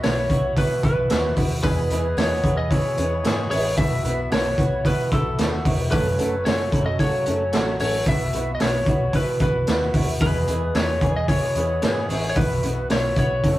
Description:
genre	jangly indie pop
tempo	112 BPM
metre	4/4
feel	straight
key	unclear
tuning	A4 = 440 Hz
part	lightly driven lead guitar	melody	0.0-13.6 s	A4 to E5	-24 LUFS	equal	none
part	electric guitar through a small old amp	accompaniment	0.0-13.6 s	E2 to G#4	-33 LUFS	right 2 dB	none
part	overdriven combo organ	accompaniment	0.0-13.6 s	A3 to C#5	-31 LUFS	right 2 dB	none
part	twelve-string electric guitar	arpeggios	0.0-13.6 s	E2 to G#4	-33 LUFS	left 2 dB	none
part	vintage muted fingered electric bass	bass	0.0-13.6 s	E1 to G#2	-28 LUFS	equal	none
part	raw garage drum kit	drums	0.0-13.6 s	hi-hat, kick drum, snare drum	-22 LUFS	equal	none
part	tambourine	percussion	0.0-13.6 s	none	-50 LUFS	right 4 dB	none
room	moderate studio reverb, RT60 0.6 s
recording	rough rehearsal-room recording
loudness	-19 LUFS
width	side -16 dB against mid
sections	0.0-13.6 A section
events	none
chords	0.0 Bsus4; 1.6 E; 3.8 Bsus4; 5.9 F#m; 8.1 Bsus4; 10.2 E; 12.4 Bsus4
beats	0.03 0.57 1.10 | 1.64 2.17 2.71 3.24 | 3.78 4.31 4.85 5.38 | 5.92 6.46 6.99 7.53 | 8.06 8.60 9.14 9.68 | 10.21 10.75 11.29 11.83 | 12.37 12.90 13.44

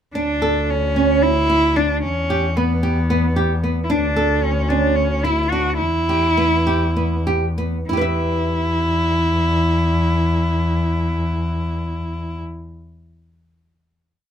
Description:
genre	contemporary instrumental, chamber music in an uneven meter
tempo	185-226 BPM (eighths)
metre	7/8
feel	straight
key	E dorian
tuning	A4 = 440 Hz
part	dark cello	melody	0.1-12.4 s	B3 to F#4	-20 LUFS	equal	none
part	flamenco guitar	arpeggios	0.2-12.5 s	B3 to E5	-22 LUFS	right 2 dB	none
part	dark double bass	bass	0.2-12.4 s	D2 to E2	-21 LUFS	left 1 dB	none
room	little or no reverb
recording	close, detailed microphones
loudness	-16 LUFS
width	side -9 dB against mid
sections	0.2-7.9 A section; 7.9-12.4 final chord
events	slowing down 3.9-7.9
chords	0.2 D5; 2.0 Em; 3.9 D5; 5.8 Em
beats	| 0.15 0.42 0.69 0.96 1.22 1.49 1.76 | 2.03 2.29 2.56 2.83 3.10 3.36 3.63 | 3.90 4.16 4.43 4.70 4.97 5.24 5.52 | 5.80 6.08 6.37 6.66 6.96 7.27 7.58 | 7.90 8.22 8.54 8.87 9.19 9.51 9.83 | 10.16 10.48 10.80 11.13 11.45 11.78 12.10

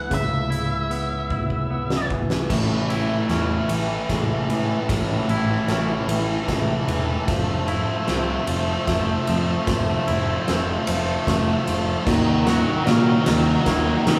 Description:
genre	post-rock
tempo	50 BPM (dotted quarters)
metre	6/8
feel	straight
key	A lydian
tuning	A4 = 440 Hz
part	octave-fuzz lead guitar	melody	0.0-2.1 s	E5 to F#5	-30 LUFS	equal	distortion
part	dark chamber string section	sustained chords	0.0-14.2 s	C#3 to A#5	-37 LUFS	equal	none
part	twangy electric guitar	arpeggios	0.0-14.2 s	A2 to F#4	-29 LUFS	equal	none
part	overdriven picked electric bass	bass	0.0-14.2 s	E1 to D#3	-27 LUFS	equal	none
part	huge arena drum kit	drums	0.1-14.2 s	crash cymbal, hi-hat, kick drum, ride cymbal, snare drum	-27 LUFS	equal	none
part	distorted electric guitar	riff	2.5-14.2 s	A2 to A3	-29 LUFS	equal	overdrive
part	sludgy distorted guitar	riff	12.1-14.2 s	D#4 to A#4	-30 LUFS	equal	overdrive
room	moderate large studio reverb, RT60 1.2 s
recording	band playing live in one room, studio reverb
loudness	-22 LUFS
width	mono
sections	0.0-2.5 A section; 2.5-14.2 B section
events	drum fill 1.3-2.5, 2.5-14.2; build-up 2.5-14.2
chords	0.0 C#m7; 2.5 Amaj7; 7.3 Fmaj7; 12.1 D#m7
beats	| 0.11 1.31 | 2.50 3.70 | 4.89 6.09 | 7.29 8.48 | 9.68 10.88 | 12.07 13.27

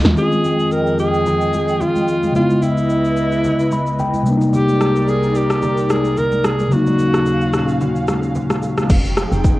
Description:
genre	amapiano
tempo	110 BPM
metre	4/4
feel	swing 55% on 16ths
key	F minor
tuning	A4 = 440 Hz
part	airy breathy pad	sustained chords	0.0-9.6 s	C2 to G5	-24 LUFS	equal	chorus
part	deep log drum bass	bass	0.0-0.2, 8.9-9.6 s	F1 to Eb2	-18 LUFS	equal	none
part	deep house drum kit	drums	0.0-9.6 s	crash cymbal, kick drum, rim click, shaker, snare drum	-20 LUFS	equal	overdrive, cassette tape
part	mellow tine electric piano	accompaniment	0.1-8.9 s	C3 to Cb6	-18 LUFS	left 1 dB	none
part	congas	percussion	0.1-8.9 s	none	-27 LUFS	right 1 dB	none
part	warm alto saxophone	melody	0.2-8.4 s	Fb4 to Bb4	-19 LUFS	right 1 dB	tape echo
room	moderate small room reverb, RT60 0.5 s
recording	home recording on cassette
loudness	-14 LUFS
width	side -17 dB against mid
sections	0.2-8.9 A section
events	drum fill 0.0; tine electric piano fill 3.4-4.5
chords	0.2 Fm7; 2.4 Dbm7; 4.3 Cm7; 6.7 Ebm7; 8.9 Fm7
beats	| 0.17 0.72 1.26 1.81 | 2.35 2.90 3.44 3.99 | 4.53 5.08 5.62 6.17 | 6.72 7.26 7.81 8.35 | 8.90 9.44

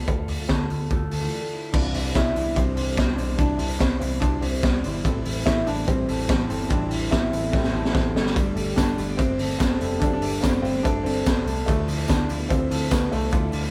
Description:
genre	jangly indie pop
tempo	145 BPM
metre	4/4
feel	straight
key	C major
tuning	A4 = 440 Hz
part	warm upright piano	melody	0.0-13.7 s	A3 to F5	-30 LUFS	equal	none
part	fingerpicked plugged-in steel-string acoustic guitar	accompaniment	0.0-13.7 s	A2 to A4	-36 LUFS	equal	none
part	electric guitar through a small old amp	arpeggios	0.0-13.7 s	A2 to C5	-35 LUFS	equal	none
part	vintage muted picked electric bass	bass	0.0-13.7 s	F1 to D2	-31 LUFS	equal	none
part	raw garage drum kit	drums	0.1-13.6 s	crash cymbal, hi-hat, kick drum, ride cymbal, snare drum	-26 LUFS	equal	none
part	reed electric piano	accompaniment	1.7-13.7 s	A3 to C5	-37 LUFS	equal	none
part	tambourine	percussion	8.4-13.6 s	none	-50 LUFS	equal	none
room	moderate studio reverb, RT60 0.6 s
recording	band playing live in one room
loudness	-23 LUFS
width	mono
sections	0.0-1.7 A section; 1.7-13.7 B section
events	break 1.3-1.7; drum fill 7.5-8.4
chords	0.0 Dmadd9; 1.7 Cadd9; 5.1 Am7; 8.2 Gsus2; 11.7 Dmadd9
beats	| 0.08 0.49 0.91 1.32 | 1.74 2.15 2.57 2.98 | 3.40 3.81 4.22 4.64 | 5.05 5.46 5.88 6.29 | 6.71 7.12 7.54 7.95 | 8.36 8.78 9.19 9.60 | 10.02 10.43 10.85 11.26 | 11.67 12.09 12.50 12.91 | 13.33

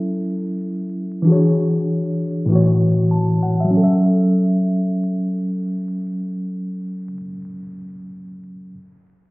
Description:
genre	hip hop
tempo	97 BPM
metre	4/4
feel	swing 57% on 16ths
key	F# minor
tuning	A4 = 442 Hz
part	mellow tine electric piano	accompaniment	0.0-8.7 s	A2 to A5	-17 LUFS	equal	medium stereo tremolo, cassette tape, high-pass filter, low-pass filter
room	light reverb, studio reverb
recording	heard muffled through a wall, stone room reverb, vinyl crackle, EQ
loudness	-16 LUFS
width	side -23 dB against mid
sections	0.0-3.7 A section; 3.7-6.2 B section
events	filter sweep on tine electric piano 0.0-3.7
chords	0.0 F#m7; 1.3 E13; 2.5 A6; 3.7 F#m7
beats	0.03 0.65 | 1.27 1.88 2.50 3.12 | 3.74 4.36 4.98 5.59

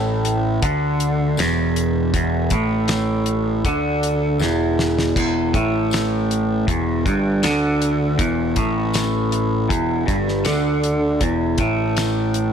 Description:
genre	psychedelic rock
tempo	79 BPM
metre	4/4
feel	straight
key	E minor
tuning	A4 = 440 Hz
part	twangy electric guitar	riff	0.0-12.5 s	E2 to D3	-19 LUFS	equal	phaser, double-tracked left and right
part	fuzz picked electric bass	bass	0.0-12.5 s	E1 to D2	-25 LUFS	equal	overdrive
part	damped 70s drum kit	drums	0.2-12.5 s	hi-hat, kick drum, snare drum, splash cymbal	-24 LUFS	left 1 dB	none
part	tambourine	percussion	1.4-12.1 s	none	-37 LUFS	left 8 dB	none
room	small room ambience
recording	none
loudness	-17 LUFS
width	side -7 dB against mid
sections	0.0-12.5 A section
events	drum fill 4.4-5.2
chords	0.0 E7(no3)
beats	0.63 1.38 | 2.14 2.90 3.65 4.41 | 5.17 5.92 6.68 7.44 | 8.19 8.95 9.71 10.46 | 11.22 11.97

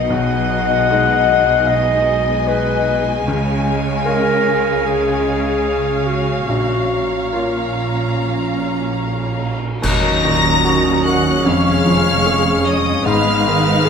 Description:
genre	cinematic, emotional film score for orchestra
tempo	71-77 BPM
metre	4/4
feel	rubato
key	Eb minor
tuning	A4 = 440 Hz
part	rich studio violin section	second line	0.0-13.9 s	Db5 to Bb5	-24 LUFS	left 2 dB	none
part	clear baby grand piano	accompaniment	0.0-13.9 s	Bb1 to F5	-23 LUFS	left 1 dB	none
part	warm studio viola section	accompaniment	0.0-13.9 s	Ab3 to F5	-24 LUFS	right 3 dB	none
part	concert harp	arpeggios	0.0-13.9 s	Ab2 to Db6	-23 LUFS	left 10 dB	none
part	dark studio double bass section	bass	0.0-13.9 s	F1 to Eb2	-25 LUFS	right 5 dB	none
part	rich studio cello section	bass	0.0-13.9 s	Eb2 to Db3	-24 LUFS	right 3 dB	none
part	dark clarinet	second line	0.1-13.9 s	F4 to Gb5	-20 LUFS	left 1 dB	none
part	cymbal swell, clash cymbals and concert bass drum	percussion	6.5-11.4 s	none	-25 LUFS	equal	none
part	rich studio violin section	melody	9.8-13.9 s	Eb6 to Bb6	-20 LUFS	left 3 dB	none
part	clear oboe	second line	9.8-13.9 s	Db5 to Eb5	-26 LUFS	left 2 dB	none
part	mellow flute section	second line	9.8-13.9 s	Cb6 to Db6	-25 LUFS	equal	none
part	mellow French horn section	sustained chords	9.8-13.9 s	Gb3 to Eb4	-23 LUFS	left 2 dB	none
room	wet scoring stage reverb, RT60 1.6 s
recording	none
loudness	-14 LUFS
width	side -6 dB against mid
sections	0.0-9.8 A section; 9.8-13.9 B section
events	band accent 9.8-10.7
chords	0.1 Abm7/Cb; 3.3 Db; 6.5 Bbm; 9.8 Ebm7; 11.5 Db/F; 13.1 Abm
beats	| 0.12 0.90 1.68 2.47 | 3.26 4.05 4.85 5.66 | 6.49 7.33 8.17 9.00 | 9.84 10.65 11.46 12.27 | 13.07 13.86

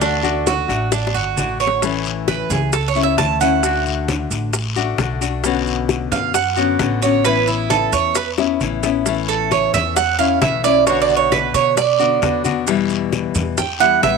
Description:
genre	latin, Cuban son and guajira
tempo	133 BPM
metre	4/4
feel	straight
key	unclear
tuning	A4 = 440 Hz
part	nylon-string guitar	accompaniment	0.0-14.2 s	B2 to F#4	-20 LUFS	left 12 dB	none
part	Cuban tres	arpeggios	0.0-14.2 s	D4 to A5	-17 LUFS	right 12 dB	none
part	upright bass	bass	0.0-14.2 s	G1 to B2	-25 LUFS	equal	none
part	bongos	percussion	0.0-14.2 s	none	-24 LUFS	left 10 dB	none
part	congas	percussion	0.0-14.2 s	none	-27 LUFS	equal	none
part	guiro	percussion	0.0-14.2 s	none	-30 LUFS	left 11 dB	none
part	maracas	percussion	0.0-14.2 s	none	-28 LUFS	right 13 dB	none
room	light reverb, studio ambience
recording	1960s-style stereo with parts hard left and right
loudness	-15 LUFS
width	side -4 dB against mid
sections	0.0-1.8 A section; 1.8-14.2 B section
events	drum fill 0.9-1.8, 8.4-9.1; Cuban tres solo 1.8-14.2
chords	0.0 D; 1.8 A; 3.6 D; 5.4 Bmadd9; 7.3 Aadd9; 10.9 Bm; 12.7 Em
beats	| 0.01 0.47 0.92 1.37 | 1.82 2.28 2.73 3.18 | 3.63 4.09 4.54 4.99 | 5.44 5.90 6.35 6.80 | 7.25 7.70 8.16 8.61 | 9.06 9.51 9.96 10.41 | 10.87 11.32 11.77 12.22 | 12.67 13.13 13.58 14.03

